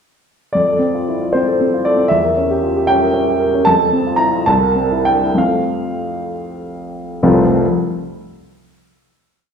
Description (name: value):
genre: classical, romantic character piece for solo piano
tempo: 63-79 BPM (dotted quarters)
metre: 6/8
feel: rubato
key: F major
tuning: A4 = 440 Hz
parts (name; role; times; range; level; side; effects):
- warm upright piano; solo; 0.5-7.7 s; F1 to Bb5; -13 LUFS; equal; none
room: wet recital hall reverb, RT60 1.4 s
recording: recorded in a church or concert hall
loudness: -13 LUFS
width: side -6 dB against mid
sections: 0.5-7.2 A section; 7.2-8.9 final chord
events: slowing down 2.9-7.2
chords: 0.5 F; 2.1 Edim7; 3.7 F; 4.5 C7; 5.4 F